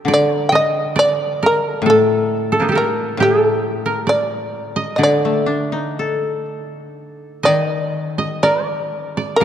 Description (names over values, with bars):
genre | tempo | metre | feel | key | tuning
japanese traditional, Japanese chamber music | 59-69 BPM | 4/4 | rubato | D miyako bushi | A4 = 440 Hz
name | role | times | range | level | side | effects
koto | second line | 0.0-9.4 s | Bb3 to Eb5 | -20 LUFS | right 2 dB | none
koto | accompaniment | 0.0-9.4 s | A2 to A4 | -21 LUFS | left 3 dB | none
shamisen | melody | 0.1-9.4 s | A4 to G5 | -18 LUFS | right 1 dB | none
room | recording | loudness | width
wet church reverb, RT60 3.4 s | dark, warm production | -15 LUFS | side -10 dB against mid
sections
0.0-7.5 A section; 7.5-9.4 B section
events
none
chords
none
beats
| 0.07 0.97 1.85 2.74 | 3.65 4.55 5.49 6.48 | 7.48 8.45 9.41